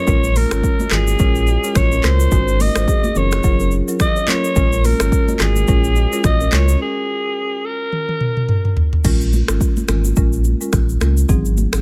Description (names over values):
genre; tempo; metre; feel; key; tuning
afrobeats; 107 BPM; 4/4; swing 58% on 16ths; Bb minor; A4 = 435 Hz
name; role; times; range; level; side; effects
growling alto saxophone; melody; 0.0-8.8 s; Ab4 to Eb5; -24 LUFS; equal; none
marimba with medium mallets; accompaniment; 0.1-11.8 s; Gb3 to C5; -26 LUFS; equal; none
kalimba; riff; 0.1-6.8 s; C4 to Eb5; -30 LUFS; equal; tape echo
sub bass with octave; bass; 0.1-11.8 s; Gb1 to Db2; -19 LUFS; equal; none
afro-pop drum kit; drums; 0.1-11.8 s; crash cymbal, finger snaps, handclaps, hi-hat, kick drum, rim click, shaker, toms; -20 LUFS; equal; overdrive
congas; percussion; 0.1-11.7 s; none; -29 LUFS; equal; none
room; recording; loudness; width
studio reverb; none; -17 LUFS; mono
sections
0.0-9.0 A section; 9.0-11.8 B section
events
break 6.8-9.0; drum fill 7.9-9.0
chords
0.1 Bbm7; 2.3 Ab7; 3.2 Gbmaj7; 4.6 Bbm7; 6.8 N.C.; 9.0 Bbm7; 11.3 Ab7